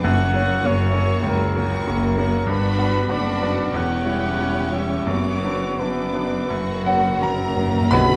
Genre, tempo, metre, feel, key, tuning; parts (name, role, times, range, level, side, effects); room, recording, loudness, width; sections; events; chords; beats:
classical, romantic movement for piano and orchestra; 83-100 BPM; 4/4; rubato; A4 = 444 Hz
clear grand piano; melody; 0.0-8.2 s; B1 to B5; -24 LUFS; equal
rich studio violin section; melody; 0.0-8.2 s; F#5 to D6; -37 LUFS; equal
mellow cor anglais; second line; 0.0-7.6 s; A#4 to F#5; -29 LUFS; equal
rich studio violin section; second line; 0.0-8.0 s; D4 to B4; -37 LUFS; equal
rich studio viola section; accompaniment; 0.0-8.0 s; F#3 to D4; -32 LUFS; equal
rich studio double bass section; bass; 0.0-8.0 s; E1 to B1; -30 LUFS; equal
timpani; percussion; 0.0-0.9, 5.1-8.2 s; F#2 to B2; -28 LUFS; equal
rich studio cello section; bass; 0.1-8.0 s; E2 to B2; -30 LUFS; equal
cymbal swell and tam-tam; percussion; 5.1-8.2 s; -35 LUFS; equal
mellow hollow silver concert flute; second line; 6.9-8.2 s; F#5 to B5; -31 LUFS; equal
dark French horn section; sustained chords; 7.9-8.2 s; D4 to F#4; -27 LUFS; equal
wet recital hall reverb, RT60 1.5 s; -21 LUFS; mono
0.0-7.9 A section
timpani fill 6.5-7.9; band accent 7.9
0.1 F#; 2.5 Gmaj7; 3.7 C#dim/E; 5.1 Bm/F#; 6.5 F#
| 0.05 0.66 1.26 1.88 | 2.50 3.11 3.74 4.39 | 5.08 5.80 6.51 7.22 | 7.92